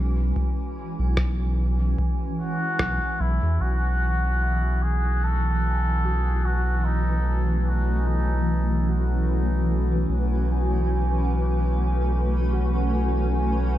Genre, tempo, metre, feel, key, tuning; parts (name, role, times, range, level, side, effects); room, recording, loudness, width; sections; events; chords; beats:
ambient dub; 74 BPM; 4/4; swing 56% on 16ths; A4 = 440 Hz
granular cloud pad; sustained chords; 0.0-13.8 s; E3 to B4; -28 LUFS; equal; built-in reverb
warm sub bass; bass; 0.0-13.8 s; B1 to E2; -22 LUFS; equal; tube saturation
electronic kick drum; drums; 0.4-3.0 s; -28 LUFS; equal; overdrive
electronic rim click; drums; 1.2-3.0 s; -28 LUFS; equal
trumpet with cup mute; melody; 2.4-9.2 s; D#4 to A4; -30 LUFS; equal; dub echo
bubbling stepped-filter texture; texture; 3.6-13.8 s; F#4 to G#5; -34 LUFS; left 1 dB; chorus, built-in reverb
light reverb; -21 LUFS; side -13 dB against mid
0.0-3.6 A section; 3.6-13.8 B section
0.0 E69/B
| 0.36 1.17 1.99 2.80 | 3.61 4.42 5.23 6.04 | 6.85 7.66 8.47 9.28 | 10.09 10.90 11.71 12.53 | 13.34